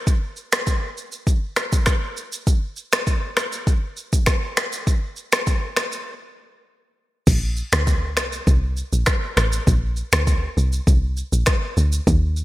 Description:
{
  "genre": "afrobeats",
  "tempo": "100 BPM",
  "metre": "4/4",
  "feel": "straight",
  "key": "Bb major",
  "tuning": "A4 = 437 Hz",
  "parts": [
    { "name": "deep house drum kit", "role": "drums", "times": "0.1-12.4 s", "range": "crash cymbal, finger snaps, kick drum, rim click, shaker", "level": "-19 LUFS", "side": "equal", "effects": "gated reverb" },
    { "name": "deep log drum bass", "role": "bass", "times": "7.3-12.4 s", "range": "A1 to Eb2", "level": "-20 LUFS", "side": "equal", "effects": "none" }
  ],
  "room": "light reverb",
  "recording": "bright 1980s-style digital production",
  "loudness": "-19 LUFS",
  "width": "side -17 dB against mid",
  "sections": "0.0-7.3 A section; 7.3-12.4 B section",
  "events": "break 6.1-7.3",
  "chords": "none"
}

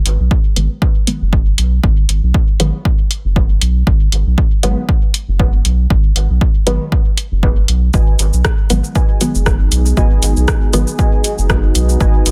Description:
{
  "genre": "dub techno",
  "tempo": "118 BPM",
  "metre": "4/4",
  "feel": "swing 56% on 16ths",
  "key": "G# minor",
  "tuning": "A4 = 438 Hz",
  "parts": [
    { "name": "round analog bass", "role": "bass", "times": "0.1-12.3 s", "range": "F#1 to B1", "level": "-16 LUFS", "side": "equal", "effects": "sidechain pumping" },
    { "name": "punchy analog drum machine", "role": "drums", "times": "0.1-12.3 s", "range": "hi-hat, rim click, shaker", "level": "-21 LUFS", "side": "equal", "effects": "none" },
    { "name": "electronic kick drum", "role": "drums", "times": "0.3-12.1 s", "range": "none", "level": "-16 LUFS", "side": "equal", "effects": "none" },
    { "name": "filtered dub chord stab", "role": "stabs", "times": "0.6-10.9 s", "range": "D#3 to B3", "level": "-24 LUFS", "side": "equal", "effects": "chorus, phaser, sidechain pumping, dub echo" },
    { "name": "deep dark ambient pad", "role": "sustained chords", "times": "9.2-12.3 s", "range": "B3 to A#4", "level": "-25 LUFS", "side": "equal", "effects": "chorus, built-in reverb, sidechain pumping" },
    { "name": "warbly dusty pluck", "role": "riff", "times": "7.9-12.1 s", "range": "F#4 to G#5", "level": "-29 LUFS", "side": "equal", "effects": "chorus, cassette tape, sidechain pumping, dub echo" }
  ],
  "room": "little or no reverb",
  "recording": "dense, heavily limited modern master",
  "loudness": "-14 LUFS",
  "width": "mono",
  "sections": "0.0-12.3 A section",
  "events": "none",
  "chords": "0.0 G#m7"
}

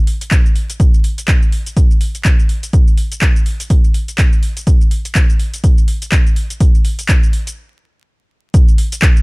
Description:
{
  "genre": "house",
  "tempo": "124 BPM",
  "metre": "4/4",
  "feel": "swing 58% on 16ths",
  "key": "none",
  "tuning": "none",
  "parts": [
    { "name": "deep house drum kit", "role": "drums", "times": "0.1-9.2 s", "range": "handclaps, hi-hat, shaker", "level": "-21 LUFS", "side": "equal", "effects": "overdrive" },
    { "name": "electronic kick drum", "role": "drums", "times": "0.3-9.1 s", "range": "none", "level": "-11 LUFS", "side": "equal", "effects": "none" }
  ],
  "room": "digital ambience",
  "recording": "dry, gritty hardware recording, vinyl crackle",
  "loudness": "-11 LUFS",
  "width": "side -28 dB against mid",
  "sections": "0.0-8.5 A section",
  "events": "stop 7.6-8.5",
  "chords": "none"
}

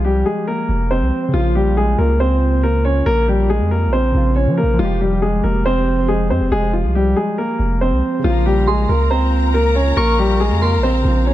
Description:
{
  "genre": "hip hop",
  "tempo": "139 BPM",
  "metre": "4/4",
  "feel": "half-time",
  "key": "unclear",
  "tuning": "A4 = 438 Hz",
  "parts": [
    { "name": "dark baby grand piano", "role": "melody", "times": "0.0-11.3 s", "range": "F3 to Db5", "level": "-18 LUFS", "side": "equal", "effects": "low-pass filter, digital delay" },
    { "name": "warbly lo-fi synth keys", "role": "accompaniment", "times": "0.0-11.3 s", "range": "Db3 to G4", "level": "-25 LUFS", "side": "left 2 dB", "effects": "chorus, low-pass filter" },
    { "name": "long sustained 808-style bass", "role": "bass", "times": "0.0-11.3 s", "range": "F1 to F3", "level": "-17 LUFS", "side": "equal", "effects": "none" },
    { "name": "warm symphonic string section", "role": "sustained chords", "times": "8.2-11.3 s", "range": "Bb4 to Bb5", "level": "-27 LUFS", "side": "left 4 dB", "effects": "none" },
    { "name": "soft synth bell", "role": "second line", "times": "8.7-10.8 s", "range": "Bb5 to Db6", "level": "-24 LUFS", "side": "right 3 dB", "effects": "chorus, phaser, digital delay" }
  ],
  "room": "light reverb, small room ambience",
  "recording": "dark, warm production",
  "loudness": "-14 LUFS",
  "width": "side -14 dB against mid",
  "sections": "0.0-8.2 A section; 8.2-11.3 B section",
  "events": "none",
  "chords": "0.0 Fmadd9; 1.3 Bbm; 4.8 Fmadd9; 8.2 Bbm"
}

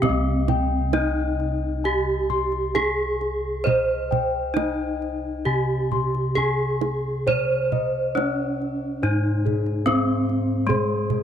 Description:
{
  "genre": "Javanese gamelan",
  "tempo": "68 BPM",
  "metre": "4/4",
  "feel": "uneven beats",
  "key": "C pelog",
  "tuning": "A4 = 440 Hz",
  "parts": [
    { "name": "gamelan-type bronze metallophone", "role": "melody", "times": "0.0-11.2 s", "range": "Ab3 to C5", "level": "-24 LUFS", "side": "right 1 dB", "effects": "none" },
    { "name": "gamelan-type bossed gongs", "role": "arpeggios", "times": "0.0-11.2 s", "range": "Ab4 to C6", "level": "-29 LUFS", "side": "left 11 dB", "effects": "slapback echo" },
    { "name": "gamelan-type bossed gongs", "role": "bass", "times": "0.0-11.2 s", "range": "C2 to C5", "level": "-26 LUFS", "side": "equal", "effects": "none" },
    { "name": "kendang", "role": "percussion", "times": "0.0-11.2 s", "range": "none", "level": "-27 LUFS", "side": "right 7 dB", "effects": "none" }
  ],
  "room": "moderate plate reverb, RT60 3.0 s",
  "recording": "1960s-style stereo with parts hard left and right",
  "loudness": "-21 LUFS",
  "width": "side -9 dB against mid",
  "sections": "0.0-11.2 A section",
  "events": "none",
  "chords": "none"
}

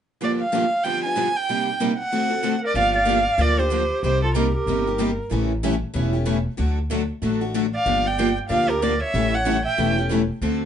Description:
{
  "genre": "acoustic string swing (jazz manouche)",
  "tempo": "188 BPM",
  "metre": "4/4",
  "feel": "swing 60% on 8ths",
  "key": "G minor",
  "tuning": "A4 = 442 Hz",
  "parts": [
    { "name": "warm violin", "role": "melody", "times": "0.2-5.1, 7.8-9.9 s", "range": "A4 to Ab5", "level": "-22 LUFS", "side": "right 1 dB", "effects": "none" },
    { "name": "picked steel-string acoustic guitar", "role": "accompaniment", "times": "0.2-10.6 s", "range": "G2 to A4", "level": "-26 LUFS", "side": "left 6 dB", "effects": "none" },
    { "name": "picked steel-string acoustic guitar", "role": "accompaniment", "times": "0.2-10.6 s", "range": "G2 to A4", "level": "-27 LUFS", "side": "right 6 dB", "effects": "none" },
    { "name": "clear clarinet", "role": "second line", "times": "2.6-5.1, 7.7-9.9 s", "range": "F4 to E5", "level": "-27 LUFS", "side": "right 3 dB", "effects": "none" },
    { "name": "upright bass", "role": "bass", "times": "2.7-10.7 s", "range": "E1 to D2", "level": "-25 LUFS", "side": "equal", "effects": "none" }
  ],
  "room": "moderate studio ambience, RT60 0.5 s",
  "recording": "nothing above 10.9 kHz",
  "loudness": "-19 LUFS",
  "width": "side -9 dB against mid",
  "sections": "0.2-2.8 A section; 2.8-10.7 B section",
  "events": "none",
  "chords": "0.2 Gm7; 0.8 G7; 1.5 Cm7; 2.1 D7; 2.8 Gm7; 4.0 Cm7; 5.3 A7; 6.6 D; 7.9 Gm7; 9.1 A7"
}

